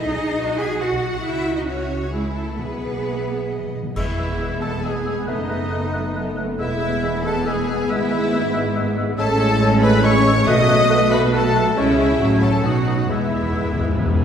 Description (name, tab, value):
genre	classical, dramatic, fast romantic movement for symphony orchestra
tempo	138 BPM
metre	3/4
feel	rubato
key	E major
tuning	A4 = 440 Hz
part	rich symphonic violin section	melody	0.0-14.2 s	B4 to D#6	-29 LUFS	left 4 dB	none
part	clear symphonic violin section	second line	0.0-14.2 s	D#4 to G#5	-29 LUFS	left 4 dB	none
part	rich symphonic viola section	accompaniment	0.0-14.2 s	F#3 to G#4	-25 LUFS	right 1 dB	none
part	rich studio cello section	bass	0.0-14.2 s	E2 to G#4	-24 LUFS	right 1 dB	none
part	clear symphonic double bass section	bass	0.1-14.2 s	E1 to C#2	-26 LUFS	right 2 dB	none
part	timpani	percussion	2.6-3.9, 10.5-11.1, 13.1-14.2 s	E2 to B2	-26 LUFS	left 2 dB	none
part	hollow concert flute	second line	4.0-14.1 s	C#6 to F#6	-32 LUFS	left 3 dB	none
part	mellow clarinet	second line	4.0-14.1 s	B4 to C#5	-32 LUFS	left 1 dB	none
part	warm oboe	second line	4.0-14.2 s	D#4 to D#5	-29 LUFS	equal	none
part	dark bassoon	accompaniment	4.0-14.1 s	F#3 to A3	-28 LUFS	right 1 dB	none
part	dark French horn section	sustained chords	4.0-14.2 s	F#3 to A4	-26 LUFS	left 3 dB	none
part	dark trumpet section	stabs	4.0-14.2 s	D#4 to D#5	-26 LUFS	right 1 dB	none
part	clash cymbals, concert bass drum and cymbal swell	percussion	4.0-4.8, 11.8-14.2 s	none	-32 LUFS	equal	none
room	wet scoring stage reverb, RT60 2.0 s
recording	heard from further back in the room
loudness	-17 LUFS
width	side -8 dB against mid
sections	0.0-4.0 A section; 4.0-14.2 B section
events	timpani fill 3.5-4.0, 13.1-14.2; band accent 4.0-4.4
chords	0.0 B; 1.2 C#m; 2.6 E/B; 4.0 E; 5.3 B7/F#; 6.6 E; 7.9 E/G#; 9.2 Amaj7; 10.5 B7; 11.8 C#m; 12.2 F#m7/A; 12.6 B; 13.1 E